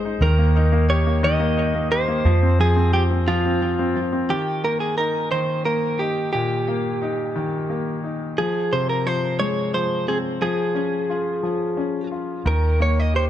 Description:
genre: six-eight pop ballad.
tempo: 59 BPM (dotted quarters).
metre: 6/8.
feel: straight.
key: unclear.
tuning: A4 = 441 Hz.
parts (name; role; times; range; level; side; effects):
clear baby grand piano; accompaniment; 0.0-13.3 s; Bb2 to G4; -24 LUFS; left 3 dB; none.
vintage muted fingered electric bass; bass; 0.0-4.3, 12.5-13.3 s; Ab1 to F2; -19 LUFS; equal; none.
direct-recorded clean electric guitar; melody; 0.2-13.2 s; F4 to Eb5; -23 LUFS; right 2 dB; ping-pong delay.
room: light reverb, small room ambience.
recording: dark, warm production, nothing above 10.7 kHz.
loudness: -19 LUFS.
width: side -11 dB against mid.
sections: 0.0-4.3 A section; 4.3-13.3 B section.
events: none.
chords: 0.2 Eb; 2.2 F5; 4.3 Eb; 8.4 Fm; 10.4 Db/F; 12.5 Eb.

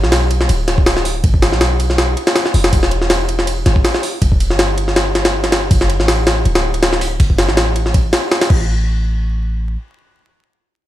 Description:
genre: drum and bass, jungle.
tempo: 161 BPM.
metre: 4/4.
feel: swing 54% on 16ths.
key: unclear.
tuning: A4 = 440 Hz.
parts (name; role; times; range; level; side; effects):
warm 808-style bass; bass; 0.0-9.8 s; D1 to B1; -16 LUFS; equal; none.
jungle sampler-style drum kit; drums; 0.0-8.6 s; crash cymbal, hi-hat, kick drum, ride cymbal, snare drum; -14 LUFS; equal; none.
room: little or no reverb.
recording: vinyl crackle.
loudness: -12 LUFS.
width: side -14 dB against mid.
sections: 0.0-8.7 A section; 8.7-10.9 B section.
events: none.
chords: none.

